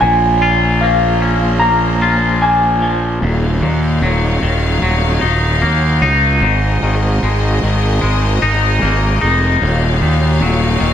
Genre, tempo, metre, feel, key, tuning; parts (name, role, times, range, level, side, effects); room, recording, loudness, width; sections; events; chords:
post-rock; 75 BPM; 4/4; straight; Eb dorian; A4 = 438 Hz
clean lap steel guitar; melody; 0.0-3.0 s; F5 to Bb5; -15 LUFS; left 1 dB; slapback echo
clear symphonic string section; sustained chords; 0.0-10.9 s; Eb3 to F5; -22 LUFS; left 1 dB
twangy electric guitar; arpeggios; 0.0-10.9 s; Eb2 to F4; -17 LUFS; left 3 dB; wide subtle chorus, slapback echo
fuzz fingered electric bass; bass; 0.0-10.9 s; Eb1 to Eb2; -14 LUFS; right 1 dB; overdrive
light reverb; -12 LUFS; side -9 dB against mid
0.0-3.2 A section; 3.2-10.9 B section
0.0 Bbm7; 3.2 Ebm7; 6.4 Abadd9; 9.6 Ebm7